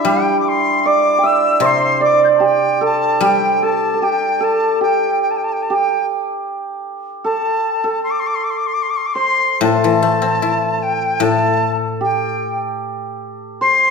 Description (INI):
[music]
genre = chinese traditional, Chinese chamber ensemble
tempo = 76 BPM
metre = 4/4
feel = straight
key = G zhi mode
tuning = A4 = 444 Hz
[part]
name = reedy dizi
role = melody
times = 0.0-13.9 s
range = E5 to G6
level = -18 LUFS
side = left 2 dB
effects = none
[part]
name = hammered dulcimer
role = second line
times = 0.0-13.9 s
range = D4 to G5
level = -18 LUFS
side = right 3 dB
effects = none
[part]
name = guzheng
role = accompaniment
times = 0.0-13.6 s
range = A2 to E4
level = -20 LUFS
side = left 6 dB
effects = none
[sound]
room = wet recital hall reverb, RT60 1.5 s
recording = minimal, uncompressed stereo recording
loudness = -14 LUFS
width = side -5 dB against mid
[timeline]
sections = 0.0-6.4 A section; 6.4-13.9 B section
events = none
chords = none